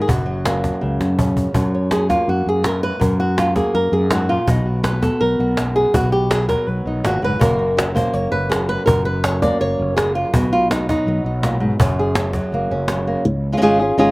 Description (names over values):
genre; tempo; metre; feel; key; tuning
flamenco; 164 BPM; 4/4; straight; F# major; A4 = 440 Hz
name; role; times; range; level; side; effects
flamenco guitar; melody; 0.0-14.1 s; F#2 to D5; -18 LUFS; equal; none
fretless electric bass; bass; 0.1-14.1 s; F#1 to F#2; -22 LUFS; equal; none
cajon; percussion; 0.1-13.2 s; none; -21 LUFS; equal; none
room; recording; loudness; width
little or no reverb; recorded outdoors, with no room sound; -16 LUFS; side -21 dB against mid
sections
0.0-1.5 A section; 1.5-13.3 B section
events
drum fill 1.0-1.5; nylon-string guitar solo 1.5-13.3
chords
0.1 F#; 4.5 B5; 7.4 F#; 10.3 B; 11.8 F#; 13.3 C#